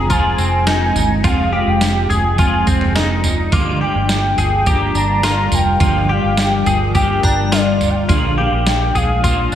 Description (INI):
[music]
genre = dream pop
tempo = 105 BPM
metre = 4/4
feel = straight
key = unclear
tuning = A4 = 443 Hz
[part]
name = warm velvety synth lead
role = melody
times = 0.0-9.6 s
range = D5 to Bb5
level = -20 LUFS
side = equal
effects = chorus, analog delay
[part]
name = semi-hollow electric guitar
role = accompaniment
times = 0.0-9.6 s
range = G2 to Ab4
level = -24 LUFS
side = right 1 dB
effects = harmonic tremolo, lush chorus
[part]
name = ethereal airy pad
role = sustained chords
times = 0.0-9.6 s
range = G3 to D5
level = -23 LUFS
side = left 1 dB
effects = ensemble chorus, built-in reverb, phaser
[part]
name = direct-recorded clean electric guitar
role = arpeggios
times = 0.0-9.6 s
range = C4 to Ab4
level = -21 LUFS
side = left 3 dB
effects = analog chorus, analog delay
[part]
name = vintage muted fingered electric bass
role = bass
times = 0.0-9.6 s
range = F1 to Bb1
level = -19 LUFS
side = equal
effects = none
[part]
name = gated 80s digital drum machine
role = drums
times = 0.1-9.6 s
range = kick drum, snare drum, tambourine, toms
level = -19 LUFS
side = right 1 dB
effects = gated reverb, gated reverb snare
[part]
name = glassy synth bell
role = texture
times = 3.5-8.3 s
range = Bb5 to D6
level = -31 LUFS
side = right 2 dB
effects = chorus, tremolo, analog delay
[sound]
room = wet lush hall reverb, RT60 1.7 s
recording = dreamy mix soaked in reverb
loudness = -13 LUFS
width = side -10 dB against mid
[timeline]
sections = 0.0-9.6 A section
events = none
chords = 0.0 Fm; 3.5 Gm7; 8.1 Bb7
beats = 0.09 0.66 | 1.24 1.81 2.38 2.95 | 3.52 4.09 4.66 5.24 | 5.81 6.38 6.95 7.52 | 8.09 8.66 9.23